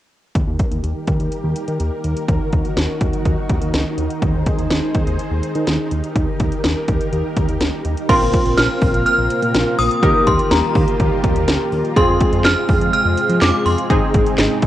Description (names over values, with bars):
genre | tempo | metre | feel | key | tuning
synth-pop | 124 BPM | 4/4 | straight | Eb major | A4 = 441 Hz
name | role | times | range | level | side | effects
string machine, cellos | sustained chords | 0.3-14.7 s | Eb3 to C5 | -23 LUFS | equal | ensemble chorus, cassette tape, shimmer reverb
fat analog bass | bass | 0.3-14.7 s | Ab1 to F3 | -21 LUFS | equal | none
house drum kit | drums | 0.3-14.7 s | crash cymbal, handclaps, hi-hat, kick drum, snare drum | -18 LUFS | equal | overdrive, cassette tape
synth chime | melody | 8.1-14.1 s | Bb5 to F6 | -19 LUFS | equal | ensemble chorus, phaser, tremolo, shimmer reverb, analog delay
funky polysynth comp | accompaniment | 8.1-14.7 s | C4 to Bb4 | -20 LUFS | equal | chorus, cassette tape, shimmer reverb
room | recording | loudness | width
moderate studio ambience, RT60 0.5 s | home recording on cassette | -15 LUFS | side -13 dB against mid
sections
0.4-8.1 A section; 8.1-14.7 B section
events
none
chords
0.4 Eb; 2.3 Gb/Eb; 4.2 Ab/Eb; 5.9 Gm/Eb; 8.1 Bbsus2; 10.0 Ebadd9; 12.0 Fm; 13.9 Ab